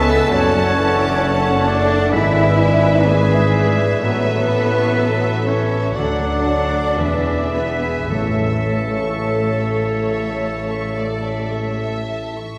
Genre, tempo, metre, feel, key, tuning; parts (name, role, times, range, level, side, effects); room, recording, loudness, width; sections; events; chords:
classical, slow romantic movement for symphony orchestra; 50-67 BPM; 4/4; rubato; A major; A4 = 440 Hz
rich studio violin section; melody; 0.0-12.6 s; C#5 to A5; -30 LUFS; equal
bright large flute ensemble; second line; 0.0-12.0 s; G#4 to E5; -32 LUFS; equal
clear oboe; second line; 0.0-12.0 s; G#4 to E5; -30 LUFS; equal
clear studio violin section; second line; 0.0-12.6 s; B4 to E6; -35 LUFS; equal
warm clarinet; second line; 0.0-12.0 s; G#4 to E5; -30 LUFS; equal
rich studio viola section; accompaniment; 0.0-12.4 s; G#4 to B4; -30 LUFS; equal
warm bassoon; accompaniment; 0.0-12.0 s; C#3 to A3; -29 LUFS; equal
warm French horn section; sustained chords; 0.0-12.2 s; G#4 to D5; -28 LUFS; equal
concert harp; arpeggios; 0.0-12.6 s; F#2 to B5; -30 LUFS; equal
bright trumpet; stabs; 0.0-12.3 s; E5 to F#5; -31 LUFS; equal
mellow tuba; bass; 0.0-12.4 s; E1 to D2; -27 LUFS; equal
rich studio cello section; bass; 0.0-12.0 s; G#3 to E4; -26 LUFS; equal
rich studio double bass section; bass; 0.0-12.3 s; F#1 to E2; -26 LUFS; equal
timpani; percussion; 8.1-9.8 s; A2; -30 LUFS; equal
wet scoring stage reverb, RT60 2.1 s; heard from further back in the room; -18 LUFS; mono
0.0-12.6 A section
0.3 D/F#; 2.1 E7/G#; 4.0 A; 5.9 D; 7.0 E7; 8.1 A